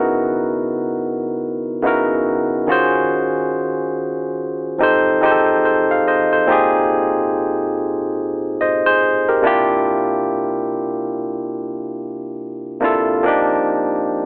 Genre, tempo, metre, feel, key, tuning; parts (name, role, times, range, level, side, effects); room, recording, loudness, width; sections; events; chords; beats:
R&B; 71 BPM; 4/4; swing 61% on 16ths; A4 = 440 Hz
barky tine electric piano; solo; 0.0-14.3 s; Bb2 to F5; -15 LUFS; equal; overdrive
moderate studio ambience, RT60 0.5 s; telephone sound; -15 LUFS; side -35 dB against mid
0.0-6.5 A section; 6.5-14.3 B section
0.0 Dbm11; 2.7 Ebm11; 4.8 F9; 6.5 Bb9sus4; 9.4 C9sus4; 13.2 F9sus4
0.56 1.41 2.25 | 3.10 3.94 4.79 5.63 | 6.48 7.32 8.17 9.01 | 9.86 10.70 11.55 12.39 | 13.24 14.08